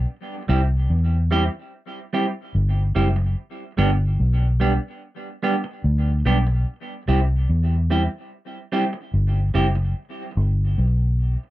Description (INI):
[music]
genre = dub reggae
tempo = 73 BPM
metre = 4/4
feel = straight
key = unclear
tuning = A4 = 439 Hz
[part]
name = vintage muted fingered electric bass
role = bass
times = 0.0-11.4 s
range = F#1 to E2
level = -18 LUFS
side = equal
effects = none
[part]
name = semi-hollow electric guitar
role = accompaniment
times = 0.5-9.8 s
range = G3 to G4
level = -25 LUFS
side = right 2 dB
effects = tape echo
[sound]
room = little or no reverb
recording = dry, close 1970s-style studio recording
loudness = -19 LUFS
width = side -16 dB against mid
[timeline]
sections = 0.0-11.5 A section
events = none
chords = 0.1 C; 3.4 G; 6.7 C; 9.9 G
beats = | 0.07 0.90 1.72 2.54 | 3.37 4.19 5.01 5.83 | 6.66 7.48 8.30 9.13 | 9.95 10.77